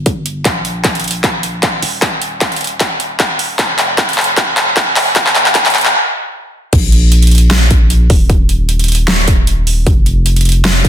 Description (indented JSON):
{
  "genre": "future bass",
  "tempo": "153 BPM",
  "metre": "4/4",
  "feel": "swing 55% on 16ths, half-time",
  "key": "unclear",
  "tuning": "A4 = 440 Hz",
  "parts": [
    { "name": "long sustained 808-style bass", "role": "bass", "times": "0.0-10.9 s", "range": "Eb1 to Bb1", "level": "-12 LUFS", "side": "equal", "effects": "sidechain pumping" },
    { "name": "big-room dance drum kit", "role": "drums", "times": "0.1-10.9 s", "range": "crash cymbal, handclaps, hi-hat, snare drum", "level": "-13 LUFS", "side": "equal", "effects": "high-pass filter on hats, high-pass filter on snare, high-pass filter on cymbals, high-pass filter on room" },
    { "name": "electronic kick drum", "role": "drums", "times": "0.1-10.9 s", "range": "none", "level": "-14 LUFS", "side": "equal", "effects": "none" }
  ],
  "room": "moderate digital room reverb, RT60 1.2 s",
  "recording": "dense, heavily limited modern master, high-pass filter",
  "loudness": "-10 LUFS",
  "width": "side -10 dB against mid",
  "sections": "0.0-6.7 A section; 6.7-10.9 B section",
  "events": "build-up 0.0-6.7; drum fill 0.5-5.9; stop 5.9-6.7; drop 6.7-10.9",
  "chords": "none"
}